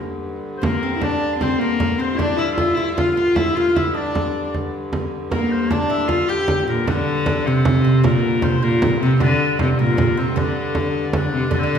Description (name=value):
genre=medieval dance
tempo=103 BPM (dotted quarters)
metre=6/8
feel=straight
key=G dorian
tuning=A4 = 440 Hz
part: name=dark hurdy-gurdy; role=drone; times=0.0-11.8 s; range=G2 to D3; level=-29 LUFS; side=left 1 dB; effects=none
part: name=frame drum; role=percussion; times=0.0-11.7 s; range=none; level=-24 LUFS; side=right 2 dB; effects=none
part: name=rich viola da gamba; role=melody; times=0.6-11.8 s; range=Bb2 to G4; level=-20 LUFS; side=left 2 dB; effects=none
part: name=clear shawm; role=second line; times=0.6-11.8 s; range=C4 to G5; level=-27 LUFS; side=left 2 dB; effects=none
part: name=oud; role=second line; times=0.6-11.8 s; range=Bb2 to G4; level=-23 LUFS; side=right 4 dB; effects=none
room=wet recital hall reverb, RT60 1.4 s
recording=recorded in a church or concert hall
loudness=-17 LUFS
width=side -7 dB against mid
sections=0.0-6.9 A section; 6.9-11.8 B section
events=none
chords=none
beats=0.42 | 1.01 1.60 | 2.19 2.78 | 3.37 3.95 | 4.54 5.12 | 5.71 6.29 | 6.88 7.46 | 8.04 8.62 | 9.20 9.78 | 10.36 10.94 | 11.52